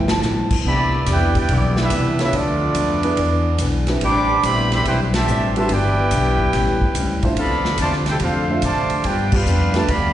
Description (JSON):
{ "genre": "jazz, big band swing", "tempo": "143 BPM", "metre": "4/4", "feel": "swing 67% on 8ths", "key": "C major", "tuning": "A4 = 441 Hz", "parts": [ { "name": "vintage hollow-body jazz guitar", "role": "accompaniment", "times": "0.0-10.1 s", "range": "G2 to A4", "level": "-27 LUFS", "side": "left 4 dB", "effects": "plate reverb, slapback echo" }, { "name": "warm upright piano", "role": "accompaniment", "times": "0.0-9.9 s", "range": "F3 to A5", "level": "-23 LUFS", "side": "right 1 dB", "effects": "plate reverb, slapback echo" }, { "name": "warm trombone section", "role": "sustained chords", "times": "0.0-0.6 s", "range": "F3 to B4", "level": "-36 LUFS", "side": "right 1 dB", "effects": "none" }, { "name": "upright bass", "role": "bass", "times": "0.0-10.1 s", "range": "G1 to A2", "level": "-21 LUFS", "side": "equal", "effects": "none" }, { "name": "swinging big-band drum kit", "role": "drums", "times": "0.1-10.0 s", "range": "crash cymbal, hi-hat, kick drum, ride cymbal, snare drum", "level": "-24 LUFS", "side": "equal", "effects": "none" }, { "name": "warm trumpet section", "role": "melody", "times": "0.7-10.1 s", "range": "B3 to D6", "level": "-21 LUFS", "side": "right 1 dB", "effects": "plate reverb, slapback echo" }, { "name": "warm trombone section", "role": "second line", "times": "0.7-10.1 s", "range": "C3 to G4", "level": "-26 LUFS", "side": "right 3 dB", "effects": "plate reverb, slapback echo" } ], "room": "light reverb", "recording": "live gig heard through the venue's PA, recital hall reverb, nothing above 10.3 kHz", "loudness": "-16 LUFS", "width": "side -12 dB against mid", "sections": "0.7-10.1 A section", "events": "drum fill 0.0; band accent 5.1, 9.3", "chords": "0.0 G13; 0.7 Cmaj9; 2.3 Bm7b5; 3.2 E7; 4.0 Am11; 5.7 Em7; 6.5 A7; 7.4 Dm7; 9.1 G7", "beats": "0.23 | 0.65 1.07 1.49 1.91 | 2.33 2.75 3.17 3.60 | 4.01 4.43 4.86 5.28 | 5.70 6.12 6.54 6.96 | 7.38 7.79 8.21 8.63 | 9.05 9.47 9.89" }